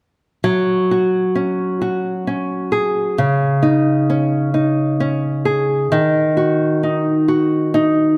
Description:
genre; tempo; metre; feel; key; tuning
pop; 44 BPM (dotted quarters); 6/8; straight; unclear; A4 = 440 Hz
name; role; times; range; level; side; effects
nylon-string guitar; accompaniment; 0.4-8.2 s; C#3 to G#4; -17 LUFS; equal; none
room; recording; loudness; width
moderate concert hall reverb, RT60 2.2 s; none; -17 LUFS; mono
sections
0.4-8.2 A section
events
none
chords
0.4 F#sus2; 3.2 C#sus2; 5.9 D#m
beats
| 0.45 1.82 | 3.19 4.55 | 5.92 7.29

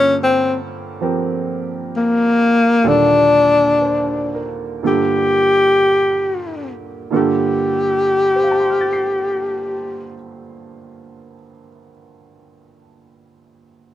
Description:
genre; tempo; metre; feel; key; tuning
jazz ballad; 48-71 BPM; 4/4; swing 69% on 8ths; G minor; A4 = 440 Hz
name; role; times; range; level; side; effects
breathy tenor saxophone; melody; 0.0-10.1 s; Bb3 to G4; -14 LUFS; left 2 dB; none
clear baby grand piano; accompaniment; 0.0-13.9 s; Eb2 to C7; -22 LUFS; right 5 dB; none
room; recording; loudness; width
light reverb; none; -14 LUFS; side -12 dB against mid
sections
0.0-2.8 A section; 2.8-7.1 B section; 7.1-12.1 C section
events
slowing down 0.0-7.1; tenor saxophone solo 0.0-2.8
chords
0.0 Gm9; 2.8 Ebmaj9#11; 4.8 Gm9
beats
0.14 1.01 1.91 | 2.84 3.80 4.82 5.91 | 7.11 8.36 9.59 10.83

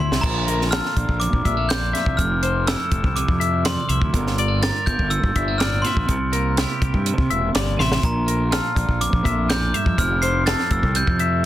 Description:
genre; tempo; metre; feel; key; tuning
math rock and midwest emo; 123 BPM; 4/4; straight; unclear; A4 = 442 Hz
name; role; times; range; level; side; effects
glockenspiel with brass mallets; melody; 0.0-11.5 s; Bb5 to C7; -25 LUFS; equal; none
clean electric guitar; accompaniment; 0.0-11.5 s; D2 to Bb4; -28 LUFS; right 6 dB; none
twangy electric guitar; arpeggios; 0.0-11.4 s; G4 to E5; -27 LUFS; left 7 dB; phaser
fuzz fingered electric bass; bass; 0.0-11.5 s; E1 to C3; -23 LUFS; equal; overdrive
compact cocktail drum kit; drums; 0.1-11.3 s; crash cymbal, hi-hat, kick drum, snare drum; -23 LUFS; equal; soft clipping on kick, soft clipping on snare
room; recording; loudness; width
little or no reverb; dense, heavily limited modern master; -18 LUFS; side -13 dB against mid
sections
0.2-11.5 A section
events
drum fill 0.0, 7.8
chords
0.2 Bbmaj7; 2.2 Fmaj7; 4.1 Gm7; 6.1 C7; 8.0 Bbmaj7; 10.0 Fmaj7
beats
| 0.23 0.72 1.21 1.70 | 2.18 2.67 3.16 3.65 | 4.13 4.62 5.11 5.60 | 6.08 6.57 7.06 7.54 | 8.03 8.52 9.01 9.49 | 9.98 10.46 10.95 11.44

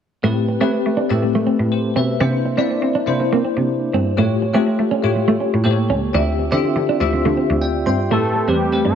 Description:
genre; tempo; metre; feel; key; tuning
pop; 122 BPM; 4/4; straight; A minor; A4 = 440 Hz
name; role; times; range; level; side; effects
bell-like tine electric piano; accompaniment; 0.2-8.9 s; A3 to C6; -20 LUFS; left 3 dB; medium stereo tremolo, lush chorus
semi-hollow electric guitar; riff; 0.2-8.9 s; A3 to D4; -24 LUFS; right 6 dB; lush chorus
rich cello; bass; 0.2-8.9 s; C#2 to C4; -20 LUFS; equal; none
fat analog lead; melody; 8.1-8.9 s; G4 to B4; -19 LUFS; right 1 dB; chorus
room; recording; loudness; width
light reverb, digital ambience; none; -16 LUFS; side -8 dB against mid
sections
0.2-8.1 A section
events
none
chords
0.2 Am9; 2.2 C9; 4.2 A7b13; 5.7 A7b9; 6.1 Dm11; 8.1 Am9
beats
| 0.24 0.73 1.23 1.72 | 2.21 2.70 3.19 3.69 | 4.18 4.67 5.16 5.65 | 6.14 6.64 7.13 7.62 | 8.11 8.61

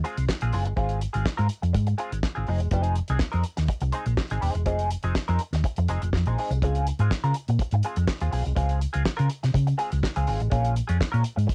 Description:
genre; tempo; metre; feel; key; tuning
disco; 123 BPM; 4/4; straight; unclear; A4 = 440 Hz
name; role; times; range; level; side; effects
direct-recorded clean electric guitar; accompaniment; 0.0-11.5 s; Ab3 to Bb4; -32 LUFS; equal; wah, analog chorus
damped 70s drum kit; drums; 0.0-11.5 s; hi-hat, kick drum, snare drum; -31 LUFS; equal; cassette tape
hollow-body short-scale fingered electric bass; bass; 0.2-11.5 s; Eb1 to Db3; -26 LUFS; equal; none
room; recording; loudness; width
little or no reverb; home recording on cassette; -25 LUFS; mono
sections
0.0-11.5 A section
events
none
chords
0.0 Ab6; 2.5 Fm7; 6.6 Dbmaj7; 10.5 Bbm7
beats
0.29 | 0.77 1.26 1.75 2.23 | 2.72 3.21 3.69 4.18 | 4.67 5.16 5.64 6.13 | 6.62 7.11 7.59 8.08 | 8.57 9.05 9.54 10.03 | 10.52 11.00 11.49

